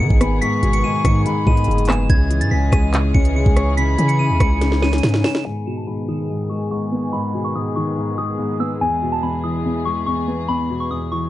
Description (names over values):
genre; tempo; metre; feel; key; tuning
hip hop, drill; 143 BPM; 4/4; half-time; G# minor; A4 = 440 Hz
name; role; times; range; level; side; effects
soft synth bell; melody; 0.0-11.3 s; G#5 to E7; -26 LUFS; equal; chorus, phaser, low-pass filter
dark concert grand piano; accompaniment; 0.0-11.3 s; E2 to C#5; -22 LUFS; left 1 dB; low-pass filter
warm studio string section; sustained chords; 0.0-11.3 s; D#3 to G#4; -27 LUFS; equal; low-pass filter
long sustained 808-style bass; bass; 0.0-5.2 s; F#1 to C#3; -18 LUFS; equal; none
drill drum kit; drums; 0.1-5.4 s; handclaps, hi-hat, kick drum, rim click, snare drum; -18 LUFS; equal; none
concert flute; second line; 0.2-5.0 s; G#5 to C#6; -26 LUFS; left 2 dB; tape echo
room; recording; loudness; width
light reverb; nothing above 10.8 kHz; -16 LUFS; side -15 dB against mid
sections
0.0-5.5 A section; 5.5-11.3 B section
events
drum fill 4.6-5.5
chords
0.0 G#m; 2.1 C#m; 5.5 G#m; 8.8 E